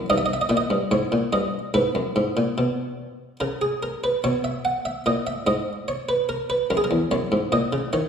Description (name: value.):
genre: classical, baroque-style 3-part fugue for harpsichord.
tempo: 73 BPM.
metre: 4/4.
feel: straight.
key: C# minor.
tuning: A4 = 440 Hz.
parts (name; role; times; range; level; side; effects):
buff-stop harpsichord; solo; 0.0-8.1 s; E2 to F#5; -21 LUFS; equal; none.
room: wet recital hall reverb, RT60 1.5 s.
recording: heard from further back in the room.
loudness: -21 LUFS.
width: side -7 dB against mid.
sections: 0.0-3.4 A section; 3.4-8.1 B section.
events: none.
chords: 0.1 D#7/G; 1.7 G#m; 3.4 C#m; 5.1 N.C.; 6.7 D#m.